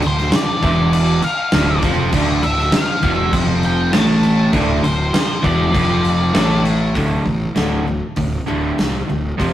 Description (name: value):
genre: quiet-loud alternative rock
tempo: 100 BPM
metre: 4/4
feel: straight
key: D minor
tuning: A4 = 440 Hz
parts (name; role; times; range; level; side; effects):
- crunchy overdriven guitar; riff; 0.0-9.5 s; D2 to A3; -18 LUFS; equal; none
- fuzz picked electric bass; bass; 0.0-9.5 s; D1 to C2; -21 LUFS; equal; overdrive
- big rock drum kit; drums; 0.0-9.5 s; crash cymbal, hi-hat, kick drum, snare drum; -20 LUFS; equal; none
- octave-fuzz lead guitar; melody; 0.1-6.6 s; C5 to A5; -22 LUFS; left 1 dB; distortion
- picked steel-string acoustic guitar; arpeggios; 6.9-9.5 s; D2 to F3; -26 LUFS; left 2 dB; none
room: moderate studio reverb, RT60 0.6 s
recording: rough rehearsal-room recording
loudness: -14 LUFS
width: side -12 dB against mid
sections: 0.0-7.0 A section; 7.0-9.5 B section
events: none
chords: 0.0 Dm; 7.0 D5